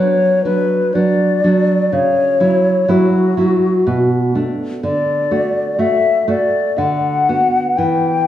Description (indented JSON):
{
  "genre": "romantic duo for flute and classical guitar",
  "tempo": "61 BPM",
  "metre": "3/4",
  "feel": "rubato",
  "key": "unclear",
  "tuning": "A4 = 440 Hz",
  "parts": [
    { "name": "mellow hollow silver concert flute", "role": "melody", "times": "0.0-8.3 s", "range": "F#4 to G5", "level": "-15 LUFS", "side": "left 3 dB", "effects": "none" },
    { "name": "nylon-string guitar", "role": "accompaniment", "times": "0.0-8.3 s", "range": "B2 to F#4", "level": "-16 LUFS", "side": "right 2 dB", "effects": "none" }
  ],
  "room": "wet recital hall reverb, RT60 1.8 s",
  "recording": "small room ambience",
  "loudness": "-13 LUFS",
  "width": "side -11 dB against mid",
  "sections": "0.0-8.3 A section",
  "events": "none",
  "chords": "0.0 Bm; 1.9 F#5/C#; 3.9 Bm7; 4.8 D; 6.8 Bm/D"
}